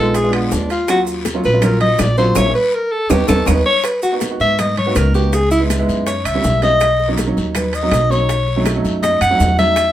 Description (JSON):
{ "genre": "Afro-Cuban jazz", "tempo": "162 BPM", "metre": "4/4", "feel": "straight", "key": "Eb minor", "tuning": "A4 = 439 Hz", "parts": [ { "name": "clear alto saxophone", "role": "melody", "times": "0.0-9.9 s", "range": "Cb4 to F#5", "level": "-16 LUFS", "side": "left 1 dB", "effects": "none" }, { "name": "clear concert grand piano", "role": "accompaniment", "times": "0.0-9.8 s", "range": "Gb3 to F#4", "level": "-20 LUFS", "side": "right 2 dB", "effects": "none" }, { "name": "upright bass", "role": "bass", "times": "0.0-9.9 s", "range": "Bb1 to G#2", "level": "-19 LUFS", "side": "equal", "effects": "none" }, { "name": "bongos", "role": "percussion", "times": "0.1-9.9 s", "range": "none", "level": "-27 LUFS", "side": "left 4 dB", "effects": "none" }, { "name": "congas", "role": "percussion", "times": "0.1-9.9 s", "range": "none", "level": "-24 LUFS", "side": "equal", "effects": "none" }, { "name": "maracas", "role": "percussion", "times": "0.1-9.9 s", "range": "none", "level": "-31 LUFS", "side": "right 5 dB", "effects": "none" }, { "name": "timbales", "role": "percussion", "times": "0.1-9.9 s", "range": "none", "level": "-28 LUFS", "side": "right 5 dB", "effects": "none" }, { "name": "guiro", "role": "percussion", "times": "0.2-9.9 s", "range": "none", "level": "-32 LUFS", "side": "left 4 dB", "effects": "none" }, { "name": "claves", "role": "percussion", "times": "0.3-9.9 s", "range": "none", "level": "-30 LUFS", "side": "left 3 dB", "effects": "none" } ], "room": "wet studio ambience, RT60 0.5 s", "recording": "band playing live in one room", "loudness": "-13 LUFS", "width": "side -12 dB against mid", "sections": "0.0-3.8 A section; 3.8-9.9 A section", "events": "alto saxophone solo 0.0-9.9; drum fill 2.4-3.8, 9.0-9.8; band accent 2.4-3.8", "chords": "0.1 Bb7b9; 0.9 Ebm7; 2.4 Bbdim; 3.1 Ebaug7; 3.8 G#m9; 5.3 C#m9; 6.1 F#7b9; 6.8 Bmaj7; 8.3 B9", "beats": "0.15 0.52 | 0.89 1.26 1.63 2.00 | 2.37 2.74 3.11 3.48 | 3.85 4.22 4.59 4.96 | 5.33 5.70 6.07 6.44 | 6.81 7.18 7.55 7.92 | 8.29 8.66 9.03 9.40 | 9.77" }